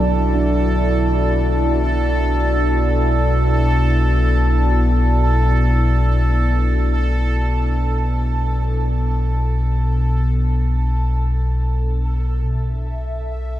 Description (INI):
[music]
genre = dark ambient drone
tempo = free time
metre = none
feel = none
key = B minor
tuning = A4 = 439 Hz
[part]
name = deep dark ambient pad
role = sustained chords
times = 0.0-12.5 s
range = B2 to A4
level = -24 LUFS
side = right 1 dB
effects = chorus, built-in reverb, shimmer reverb
[part]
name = gamelan-type bossed gongs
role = arpeggios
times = 0.0-7.4 s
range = F#3 to D4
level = -28 LUFS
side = right 2 dB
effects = dub echo, shimmer reverb
[part]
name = deep rumbling drone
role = drone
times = 0.0-13.6 s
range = B1 to B2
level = -17 LUFS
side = equal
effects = built-in reverb, phaser, wide subtle chorus
[part]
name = bubbling stepped-filter texture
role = texture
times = 0.0-13.6 s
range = A4 to E5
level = -26 LUFS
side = right 1 dB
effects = chorus, built-in reverb, shimmer reverb
[sound]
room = moderate spring reverb, RT60 2.4 s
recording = echo-heavy mix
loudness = -16 LUFS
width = side -13 dB against mid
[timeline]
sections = 0.0-12.5 A section; 12.5-13.6 A section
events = fade-out on ambient pad 0.0-12.5; fade-out on synth texture 0.0-12.5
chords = 0.0 Bm7; 12.5 N.C.